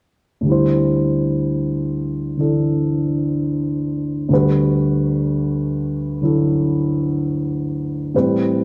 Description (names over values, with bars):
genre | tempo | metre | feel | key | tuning
jazz | 62 BPM | 4/4 | swing 66% on 8ths | unclear | A4 = 440 Hz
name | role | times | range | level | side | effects
dark baby grand piano | accompaniment | 0.4-8.6 s | D2 to C5 | -19 LUFS | equal | none
room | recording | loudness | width
wet stone room reverb, RT60 1.3 s | band playing live in one room | -19 LUFS | mono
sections
0.4-8.6 A section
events
none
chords
0.4 D7sus4; 4.3 Gmaj9/D; 8.1 Am9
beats
| 0.44 1.41 2.38 3.34 | 4.30 5.26 6.22 7.18 | 8.14